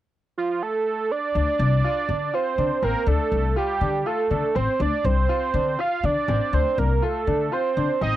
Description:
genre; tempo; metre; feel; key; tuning
progressive instrumental, progressive; 243 BPM (eighths); 7/8; straight; D minor; A4 = 440 Hz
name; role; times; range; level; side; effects
fat analog lead; melody; 0.4-8.2 s; F4 to F5; -23 LUFS; right 4 dB; chorus, cassette tape
bright concert grand piano; arpeggios; 1.3-8.2 s; C4 to F4; -30 LUFS; left 8 dB; none
upright bass; bass; 1.4-8.1 s; A1 to D3; -23 LUFS; left 2 dB; none
room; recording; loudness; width
light reverb; home recording on cassette; -20 LUFS; side -13 dB against mid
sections
0.0-1.4 A section; 1.4-8.2 B section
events
none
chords
0.0 N.C.; 1.4 Dm7

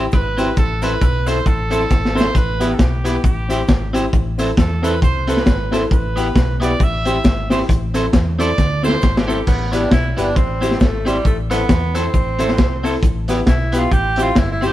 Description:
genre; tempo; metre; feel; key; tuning
ska; 135 BPM; 4/4; swing 57% on 8ths; A minor; A4 = 440 Hz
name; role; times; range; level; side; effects
electric guitar at the edge of break-up; accompaniment; 0.0-14.7 s; B3 to C5; -26 LUFS; right 1 dB; none
dark upright piano; stabs; 0.0-14.7 s; B3 to A4; -22 LUFS; left 2 dB; none
hollow-body short-scale fingered electric bass; bass; 0.0-14.7 s; G1 to E2; -22 LUFS; equal; none
clear trumpet; melody; 0.1-9.5 s; G4 to E5; -24 LUFS; right 3 dB; none
crunchy breakbeat drum kit; drums; 0.1-14.7 s; crash cymbal, hi-hat, kick drum, rim click, snare drum; -17 LUFS; equal; none
cabasa; percussion; 0.1-14.7 s; none; -43 LUFS; right 4 dB; none
warm tenor saxophone; melody; 9.5-14.7 s; G3 to G4; -22 LUFS; right 2 dB; none
room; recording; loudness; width
moderate stone room reverb, RT60 1.1 s; band playing live in one room; -14 LUFS; side -14 dB against mid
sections
0.0-9.5 A section; 9.5-14.7 A section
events
trumpet solo 0.0-9.5; drum fill 1.9-2.4, 8.6-9.5; tenor saxophone solo 9.5-14.7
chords
0.0 C; 0.6 Am; 2.4 Em/A; 3.2 C/A; 4.1 Am; 5.9 Em/A; 6.8 C/A; 7.7 Am; 9.5 Em/A; 10.4 C/A; 11.3 Am; 13.0 Em/A; 13.9 C/A

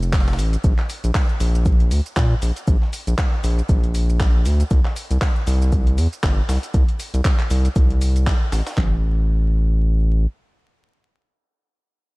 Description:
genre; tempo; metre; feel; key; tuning
deep house; 118 BPM; 4/4; swing 56% on 16ths; unclear; A4 = 439 Hz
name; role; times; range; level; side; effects
round analog bass; bass; 0.0-10.3 s; F1 to Bb2; -18 LUFS; equal; tube saturation
deep house drum kit; drums; 0.0-8.8 s; handclaps, hi-hat, shaker; -30 LUFS; equal; overdrive
breakbeat sampler-style drum kit; drums; 0.1-8.8 s; hi-hat, shaker, snare drum; -38 LUFS; equal; none
deep house drum kit; drums; 0.1-8.9 s; handclaps, kick drum, snare drum; -18 LUFS; equal; overdrive
room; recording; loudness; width
digital ambience; vinyl crackle; -17 LUFS; side -24 dB against mid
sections
0.0-8.8 A section; 8.8-12.2 B section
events
drop 0.0-8.8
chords
none

